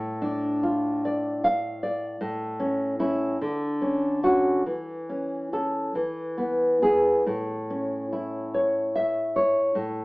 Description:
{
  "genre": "romantic piece for solo classical guitar",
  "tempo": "48 BPM (dotted quarters)",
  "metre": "6/8",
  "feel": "uneven beats, rubato",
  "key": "A major",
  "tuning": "A4 = 441 Hz",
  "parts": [
    { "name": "nylon-string guitar", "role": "solo", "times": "0.0-10.0 s", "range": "A2 to F5", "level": "-23 LUFS", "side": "equal", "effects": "none" }
  ],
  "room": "moderate studio reverb, RT60 0.8 s",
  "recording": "band playing live in one room, AM radio sound",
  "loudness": "-23 LUFS",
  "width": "side -23 dB against mid",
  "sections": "0.0-10.0 A section",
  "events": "none",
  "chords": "0.0 Dm/A; 2.2 A; 3.4 Dmaj7; 4.7 A/E; 6.0 E; 7.3 A"
}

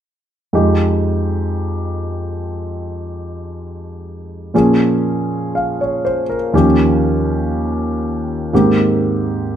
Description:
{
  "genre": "jazz",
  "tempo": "60 BPM",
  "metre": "4/4",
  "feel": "swing 67% on 8ths",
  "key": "F minor",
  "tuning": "A4 = 440 Hz",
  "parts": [
    { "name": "warm concert grand piano", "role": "accompaniment", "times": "0.5-9.6 s", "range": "Eb2 to F5", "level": "-15 LUFS", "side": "equal", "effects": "none" }
  ],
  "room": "little or no reverb",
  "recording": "close, detailed microphones",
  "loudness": "-14 LUFS",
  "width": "side -10 dB against mid",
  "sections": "0.5-9.6 A section",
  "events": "none",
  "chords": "0.5 Fm9; 4.5 Bbm7; 6.5 Eb9; 8.5 Abmaj9"
}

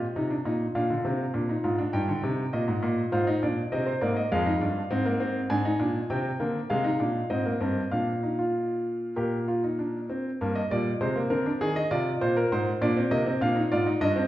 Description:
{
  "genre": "classical, baroque-style 3-part fugue for grand piano",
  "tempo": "101 BPM",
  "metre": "4/4",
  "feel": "straight",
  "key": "unclear",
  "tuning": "A4 = 442 Hz",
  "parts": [
    { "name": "warm grand piano", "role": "solo", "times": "0.0-14.3 s", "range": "F2 to Ab5", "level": "-24 LUFS", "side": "equal", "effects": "none" }
  ],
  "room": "wet recital hall reverb, RT60 1.4 s",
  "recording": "heard from further back in the room",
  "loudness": "-24 LUFS",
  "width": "side -14 dB against mid",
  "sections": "0.0-10.4 A section; 10.4-14.3 B section",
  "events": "none",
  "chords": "0.0 Ab (rootless); 0.8 Bb; 1.9 Eb/G; 3.1 Ab; 4.3 Ddim/F; 5.5 Fm/Ab; 7.9 Bbsus4; 9.2 Bb; 10.4 Eb/G; 11.6 Fm7"
}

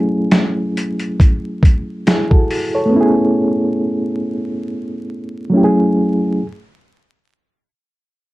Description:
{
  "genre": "lo-fi hip hop",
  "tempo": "69 BPM",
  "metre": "4/4",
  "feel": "swing 55% on 16ths",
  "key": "F# minor",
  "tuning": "A4 = 441 Hz",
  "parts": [
    { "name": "mellow reed electric piano", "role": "accompaniment", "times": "0.0-6.5 s", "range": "F#3 to C#5", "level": "-16 LUFS", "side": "equal", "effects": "fast tremolo, cassette tape, low-pass filter" },
    { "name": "dusty soul sampler-style drum kit", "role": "drums", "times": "0.3-2.7 s", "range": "hi-hat, kick drum, snare drum", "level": "-12 LUFS", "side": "equal", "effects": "overdrive" }
  ],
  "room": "light reverb",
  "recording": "dark, warm production, vinyl crackle",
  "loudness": "-14 LUFS",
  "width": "side -18 dB against mid",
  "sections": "0.0-6.4 A section",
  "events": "none",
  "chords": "0.0 F#m9; 2.9 Amaj9; 5.5 F#m9"
}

